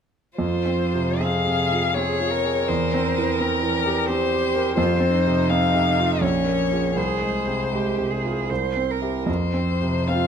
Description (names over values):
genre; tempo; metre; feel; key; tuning
classical, slow romantic movement for piano trio; 70-88 BPM; 3/4; rubato; F minor; A4 = 440 Hz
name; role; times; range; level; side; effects
rich violin; melody; 0.4-10.3 s; Bb4 to F5; -25 LUFS; left 8 dB; none
rich cello; second line; 0.4-10.3 s; Db4 to C5; -26 LUFS; right 8 dB; none
clear concert grand piano; accompaniment; 0.4-10.3 s; Bb1 to Bb4; -23 LUFS; right 1 dB; none
room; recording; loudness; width
wet recital hall reverb, RT60 1.6 s; close, detailed microphones; -20 LUFS; side -7 dB against mid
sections
0.4-10.3 A section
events
none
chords
0.4 Fm; 2.7 C7/E; 4.8 F5; 6.2 Bbm7; 7.0 Fm/C; 8.5 C; 9.3 F5